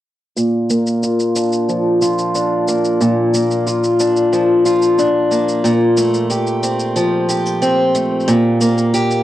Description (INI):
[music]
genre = folktronica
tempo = 91 BPM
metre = 4/4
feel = straight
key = Bb major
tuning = A4 = 440 Hz
[part]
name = picked steel-string acoustic guitar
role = arpeggios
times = 0.4-9.2 s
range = Bb2 to G4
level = -13 LUFS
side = equal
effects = low-pass filter, analog delay
[part]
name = shaker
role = drums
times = 0.4-9.2 s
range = none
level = -26 LUFS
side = equal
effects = small room ambience
[sound]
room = moderate spring reverb, RT60 1.5 s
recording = home recording on cassette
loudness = -13 LUFS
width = side -13 dB against mid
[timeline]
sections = 0.4-9.2 A section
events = filter sweep on steel-string acoustic guitar 0.4-9.2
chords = 0.4 Bb; 5.6 Fadd9/Bb; 8.3 Eb/Bb (rootless)